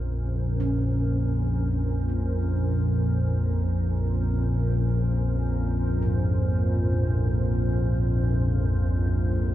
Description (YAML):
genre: dark ambient drone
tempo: free time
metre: none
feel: none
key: Bb minor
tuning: A4 = 440 Hz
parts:
  - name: granular cloud pad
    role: sustained chords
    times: 0.0-9.5 s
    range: Db4 to C5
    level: -36 LUFS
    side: right 1 dB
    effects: built-in reverb, shimmer reverb
  - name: analog drone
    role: drone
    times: 0.0-9.5 s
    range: Bb1 to F2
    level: -23 LUFS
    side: equal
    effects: wide subtle chorus
  - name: gamelan-type bossed gongs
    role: arpeggios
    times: 0.6-9.5 s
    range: Ab2 to Db4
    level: -33 LUFS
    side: right 1 dB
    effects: tape echo
room: moderate huge ambient reverb, RT60 7.6 s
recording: dark, warm production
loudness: -22 LUFS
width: side -13 dB against mid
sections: 0.0-9.5 A section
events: fade-in on ambient pad 0.0-9.5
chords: 0.0 Bbm